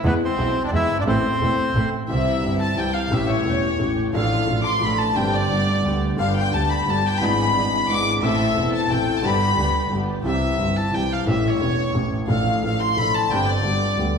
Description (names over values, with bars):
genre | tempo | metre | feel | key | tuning
tango | 176 BPM | 3/4 | rubato | C major | A4 = 440 Hz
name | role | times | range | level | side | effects
warm concert grand piano | accompaniment | 0.0-14.2 s | E1 to A4 | -22 LUFS | left 1 dB | none
dark studio string section | stabs | 0.0-10.2 s | G3 to A4 | -30 LUFS | right 1 dB | none
dark double bass | bass | 0.0-14.2 s | E1 to E2 | -26 LUFS | right 2 dB | none
bandoneon | melody | 0.1-1.9 s | B3 to E5 | -24 LUFS | equal | none
warm chamber violin section | second line | 0.1-14.2 s | B3 to D6 | -23 LUFS | left 2 dB | none
room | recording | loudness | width
wet recital hall reverb, RT60 1.4 s | heard from further back in the room | -18 LUFS | side -6 dB against mid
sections
0.0-2.1 A section; 2.1-10.3 B section; 10.3-14.2 B section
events
violin section solo 2.1-10.3, 10.3-14.2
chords
0.0 E; 1.1 Am; 2.1 C; 3.1 A7; 4.1 Dm/A; 5.2 Gsus4; 5.5 G; 7.2 E7/G#; 8.2 Am; 9.2 G; 10.3 C; 11.3 A7; 12.3 Dm/A; 13.3 Gsus4; 13.7 G